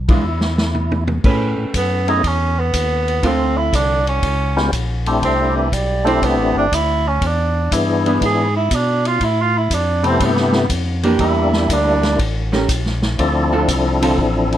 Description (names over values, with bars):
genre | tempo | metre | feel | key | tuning
soul jazz organ trio | 121 BPM | 4/4 | swing 68% on 8ths | A minor | A4 = 440 Hz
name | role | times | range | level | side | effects
tonewheel organ | bass | 0.0-14.6 s | G1 to B2 | -20 LUFS | equal | overdrive, slow rotary speaker
percussive tonewheel organ | melody | 0.1-14.6 s | C3 to A4 | -18 LUFS | left 2 dB | slow rotary speaker, overdrive, chorus vibrato
archtop guitar, miked and amplified | accompaniment | 0.1-14.2 s | D3 to B4 | -20 LUFS | right 2 dB | none
vintage drum kit | drums | 0.1-14.6 s | crash cymbal, hi-hat, kick drum, ride cymbal, snare drum, toms | -22 LUFS | equal | none
warm tenor saxophone | melody | 1.8-12.2 s | E3 to G#4 | -19 LUFS | right 3 dB | none
room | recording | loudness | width
little or no reverb | none | -15 LUFS | side -11 dB against mid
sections
0.0-1.2 A section; 1.2-14.6 B section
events
band accent 0.0; drum fill 0.2-1.2; tenor saxophone solo 1.2-14.6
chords
0.2 N.C.; 1.2 Amaj9; 3.2 Dm7; 4.2 C#7#11; 5.2 C69; 7.2 E7; 9.2 Am9; 11.2 Em7b5; 12.2 A7b9; 13.2 Dm7